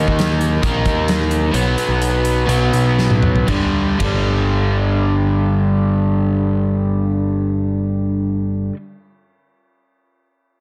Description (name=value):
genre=quiet-loud alternative rock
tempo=116-136 BPM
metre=4/4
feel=straight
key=unclear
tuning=A4 = 439 Hz
part: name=overdriven electric guitar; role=riff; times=0.0-8.8 s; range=G2 to Eb4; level=-20 LUFS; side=equal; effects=none
part: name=growling picked electric bass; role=bass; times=0.0-8.7 s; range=G1 to Eb2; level=-21 LUFS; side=equal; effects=overdrive
part: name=big rock drum kit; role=drums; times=0.1-4.2 s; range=hi-hat, kick drum, ride cymbal, snare drum, toms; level=-24 LUFS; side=equal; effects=none
room=light reverb, small room reverb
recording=dense, heavily limited modern master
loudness=-17 LUFS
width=mono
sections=0.0-3.5 A section; 3.5-7.6 B section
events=slowing down 0.0-3.5; drum fill 3.0-3.5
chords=0.0 Eb5; 1.5 B5; 3.5 G5